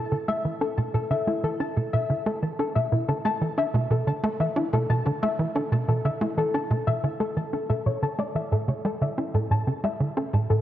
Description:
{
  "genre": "ambient, sequencer-driven space music",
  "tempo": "91 BPM",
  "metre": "4/4",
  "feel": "straight",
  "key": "unclear",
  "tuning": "A4 = 440 Hz",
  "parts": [
    { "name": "soft round pluck", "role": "arpeggios", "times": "0.0-10.6 s", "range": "E4 to A5", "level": "-28 LUFS", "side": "left 4 dB", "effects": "chorus, auto-pan, cassette tape, tape echo" },
    { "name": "tight sequencer bass", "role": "riff", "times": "0.0-10.6 s", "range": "A2 to D4", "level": "-25 LUFS", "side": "right 2 dB", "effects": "cassette tape, tape echo" }
  ],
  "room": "wet lush hall reverb, RT60 2.9 s",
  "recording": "home recording on cassette",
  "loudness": "-23 LUFS",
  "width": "side -12 dB against mid",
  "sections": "0.0-10.6 A section",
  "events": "none",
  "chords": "0.0 Bm; 8.5 A5"
}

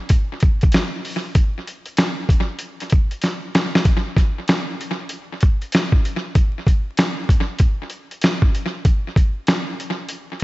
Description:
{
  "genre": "hip hop",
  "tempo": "96 BPM",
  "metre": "4/4",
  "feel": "swing 64% on 16ths",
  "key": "none",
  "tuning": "none",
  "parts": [
    { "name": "dusty soul sampler-style drum kit", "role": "drums", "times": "0.1-10.4 s", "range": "hi-hat, kick drum, snare drum", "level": "-17 LUFS", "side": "equal", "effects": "tape echo" }
  ],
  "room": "light reverb",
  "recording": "echo-heavy mix, vinyl crackle, nothing above 7.9 kHz",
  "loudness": "-17 LUFS",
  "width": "side -19 dB against mid",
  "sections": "0.0-3.9 A section; 3.9-10.4 B section",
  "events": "drum fill 3.2-3.9",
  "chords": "none"
}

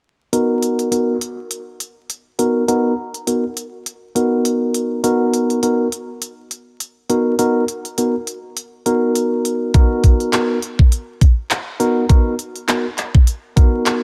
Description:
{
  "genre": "glitch hop",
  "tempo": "102 BPM",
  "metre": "4/4",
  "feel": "swing 56% on 16ths",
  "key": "unclear",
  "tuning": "A4 = 438 Hz",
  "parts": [
    { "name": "tine electric piano", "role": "stabs", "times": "0.3-14.0 s", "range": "B3 to A#4", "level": "-20 LUFS", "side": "equal", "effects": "sidechain pumping, low-pass filter, tape echo" },
    { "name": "drum and bass drum kit", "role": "drums", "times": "0.3-14.0 s", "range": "handclaps, hi-hat", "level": "-25 LUFS", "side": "equal", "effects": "none" },
    { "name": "electronic kick drum", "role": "drums", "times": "9.7-13.7 s", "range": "none", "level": "-13 LUFS", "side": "equal", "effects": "none" }
  ],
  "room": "light reverb",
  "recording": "vinyl crackle",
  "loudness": "-17 LUFS",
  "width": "mono",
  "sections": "0.3-14.0 A section",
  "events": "none",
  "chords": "0.3 Bmaj7"
}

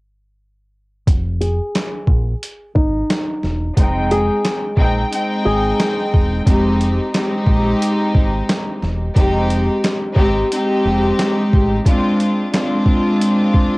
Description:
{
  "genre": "hip hop, boom-bap hip-hop",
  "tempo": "89 BPM",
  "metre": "4/4",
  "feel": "swing 60% on 16ths",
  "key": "F dorian",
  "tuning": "A4 = 438 Hz",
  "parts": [
    { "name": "deep dub fingered electric bass", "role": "bass", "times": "1.1-11.8 s", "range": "E1 to Bb1", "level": "-20 LUFS", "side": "equal", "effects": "transformer saturation" },
    { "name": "boom bap sampler-style drum kit", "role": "drums", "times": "1.1-13.7 s", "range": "handclaps, hi-hat, kick drum, snare drum", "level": "-17 LUFS", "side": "equal", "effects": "cassette tape" },
    { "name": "flamenco guitar", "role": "melody", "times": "1.4-6.4 s", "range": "Eb4 to Ab4", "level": "-22 LUFS", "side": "equal", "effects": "low-pass filter, cassette tape" },
    { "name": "warm studio string section", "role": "accompaniment", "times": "3.8-13.8 s", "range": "Ab3 to G5", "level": "-17 LUFS", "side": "equal", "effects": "cassette tape, low-pass filter" }
  ],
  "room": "moderate small room reverb, RT60 0.5 s",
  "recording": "home recording on cassette, faint mains hum",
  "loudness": "-14 LUFS",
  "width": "side -24 dB against mid",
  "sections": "1.1-6.5 A section; 6.5-13.8 B section",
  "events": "filter sweep 1.1-6.5",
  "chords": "1.1 Fm7; 11.9 Fm6/Ab"
}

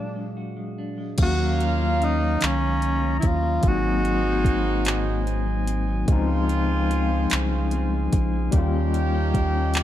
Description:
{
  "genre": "slow six-eight R&B",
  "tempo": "49 BPM (dotted quarters)",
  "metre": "6/8",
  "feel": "straight",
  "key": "Eb minor",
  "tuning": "A4 = 436 Hz",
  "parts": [
    { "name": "breathy tenor saxophone", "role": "melody", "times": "0.0-5.3 s", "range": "Db4 to Gb4", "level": "-26 LUFS", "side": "equal", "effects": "slapback echo" },
    { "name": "clean electric guitar", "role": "second line", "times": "0.0-9.8 s", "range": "Ab2 to G4", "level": "-31 LUFS", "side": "right 4 dB", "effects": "none" },
    { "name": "overdriven tine electric piano", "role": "accompaniment", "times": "0.0-9.8 s", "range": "Eb3 to F5", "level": "-28 LUFS", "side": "left 6 dB", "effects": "medium tremolo" },
    { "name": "mellow brass ensemble", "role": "sustained chords", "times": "1.2-9.8 s", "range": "Gb3 to Bb5", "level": "-34 LUFS", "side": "left 2 dB", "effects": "stereo widening" },
    { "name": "warm horn section", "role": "stabs", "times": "1.2-9.8 s", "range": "F3 to F5", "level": "-30 LUFS", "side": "right 4 dB", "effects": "none" },
    { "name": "round analog bass", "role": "bass", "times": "1.2-9.8 s", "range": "Ab1 to Eb2", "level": "-24 LUFS", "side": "equal", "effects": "none" },
    { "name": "smooth R&B drum kit", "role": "drums", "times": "1.2-9.8 s", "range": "crash cymbal, handclaps, hi-hat, kick drum", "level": "-23 LUFS", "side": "equal", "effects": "none" }
  ],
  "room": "little or no reverb",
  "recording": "dark, warm production",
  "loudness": "-20 LUFS",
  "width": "side -12 dB against mid",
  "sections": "0.0-1.2 A section; 1.2-9.8 B section",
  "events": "break 0.0-1.2",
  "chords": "0.0 Bb7b13; 1.2 Ebm7; 3.6 Ab7; 6.1 Dbmaj7; 8.5 Eb7"
}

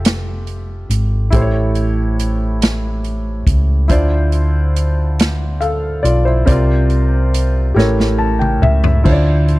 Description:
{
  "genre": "slow gospel",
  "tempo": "47 BPM (dotted quarters)",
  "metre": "6/8",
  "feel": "straight",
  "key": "unclear",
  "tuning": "A4 = 439 Hz",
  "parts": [
    { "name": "warm concert grand piano", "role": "accompaniment", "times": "0.0-9.6 s", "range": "A2 to A5", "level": "-18 LUFS", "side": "equal", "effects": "none" },
    { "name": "hollow-body short-scale fingered electric bass", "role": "bass", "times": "0.0-9.6 s", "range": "F1 to D2", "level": "-15 LUFS", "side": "equal", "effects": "none" },
    { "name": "swinging big-band drum kit", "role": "drums", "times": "0.0-9.6 s", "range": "crash cymbal, hi-hat, kick drum, snare drum, toms", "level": "-17 LUFS", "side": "equal", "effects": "none" }
  ],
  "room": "studio ambience",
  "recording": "dry, close 1970s-style studio recording",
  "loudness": "-13 LUFS",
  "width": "side -19 dB against mid",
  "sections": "0.0-9.6 A section",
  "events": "drum fill 7.8-9.1; grand piano fill 7.8-9.1",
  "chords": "0.0 Fmaj9; 1.3 A7; 3.9 Dm9; 6.5 C9sus4; 7.8 A7b9; 9.1 Dm9"
}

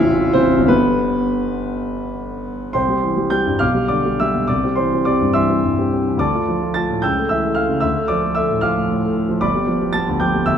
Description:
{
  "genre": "classical, romantic character piece for solo piano",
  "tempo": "56-79 BPM (dotted quarters)",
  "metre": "6/8",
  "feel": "rubato",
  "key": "C major",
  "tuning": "A4 = 439 Hz",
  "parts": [
    { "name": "warm concert grand piano", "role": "solo", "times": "0.0-10.6 s", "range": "A0 to A6", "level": "-16 LUFS", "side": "equal", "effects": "none" }
  ],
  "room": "moderate scoring stage reverb, RT60 1.7 s",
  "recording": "dark, warm production",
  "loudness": "-16 LUFS",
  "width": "side -8 dB against mid",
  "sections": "0.0-2.8 A section; 2.8-10.6 B section",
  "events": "none",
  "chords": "0.0 Am; 0.7 G; 2.8 C; 3.6 G7/B; 4.5 C; 6.2 Dm; 7.0 A7/C#; 7.8 Dm; 9.4 G7"
}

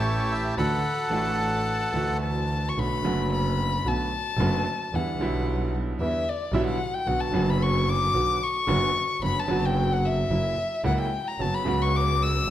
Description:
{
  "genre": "tango",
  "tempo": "111 BPM",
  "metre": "4/4",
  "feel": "rubato",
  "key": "B minor",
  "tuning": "A4 = 440 Hz",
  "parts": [
    { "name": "bandoneon", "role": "melody", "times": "0.0-2.2 s", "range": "E4 to F#5", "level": "-27 LUFS", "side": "equal", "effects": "none" },
    { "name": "dark violin", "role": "second line", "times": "0.0-12.5 s", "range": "D5 to E6", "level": "-28 LUFS", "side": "left 4 dB", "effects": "none" },
    { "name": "clear concert grand piano", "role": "accompaniment", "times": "0.0-12.5 s", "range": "F#1 to G4", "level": "-28 LUFS", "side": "right 2 dB", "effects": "none" },
    { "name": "clear double bass", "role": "bass", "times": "0.0-12.5 s", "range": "F#1 to E2", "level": "-28 LUFS", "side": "right 1 dB", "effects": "none" }
  ],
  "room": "wet large studio reverb, RT60 1.4 s",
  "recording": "none",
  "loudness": "-23 LUFS",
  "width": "side -12 dB against mid",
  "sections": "0.0-2.8 A section; 2.8-12.5 B section",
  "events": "violin solo 2.8-12.5",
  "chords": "0.0 A7; 0.6 Dadd9; 2.8 Bm7; 4.9 Em7; 7.1 Bm/F#; 10.3 F#7; 11.4 F#sus4"
}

